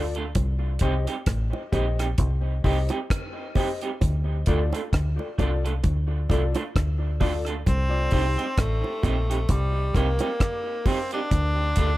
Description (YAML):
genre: dub reggae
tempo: 66 BPM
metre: 4/4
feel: swing 57% on 16ths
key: C dorian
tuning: A4 = 443 Hz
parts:
  - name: electric guitar through a small old amp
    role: accompaniment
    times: 0.0-11.9 s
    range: G3 to A4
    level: -32 LUFS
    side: right 4 dB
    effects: tape echo
  - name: reed electric piano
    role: stabs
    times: 0.0-8.4 s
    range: Eb4 to Eb5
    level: -34 LUFS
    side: left 5 dB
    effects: overdrive, fast tremolo, tape echo
  - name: deep dub fingered electric bass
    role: bass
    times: 0.0-12.0 s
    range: A1 to D2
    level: -24 LUFS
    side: equal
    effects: none
  - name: deep reggae drum kit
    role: drums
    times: 0.1-12.0 s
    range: hi-hat, kick drum, rim click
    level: -25 LUFS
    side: equal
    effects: none
  - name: bongos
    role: percussion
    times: 0.4-11.6 s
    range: none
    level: -36 LUFS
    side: right 5 dB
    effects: tape echo
  - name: clear tenor saxophone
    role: melody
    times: 7.7-12.0 s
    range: G3 to D4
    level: -28 LUFS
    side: equal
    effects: tape echo
room: small room reverb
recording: echo-heavy mix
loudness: -22 LUFS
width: side -16 dB against mid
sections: 0.0-12.0 A section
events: break 0.0-7.7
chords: 0.4 Cm; 4.0 Dm; 7.7 Cm; 11.3 Dm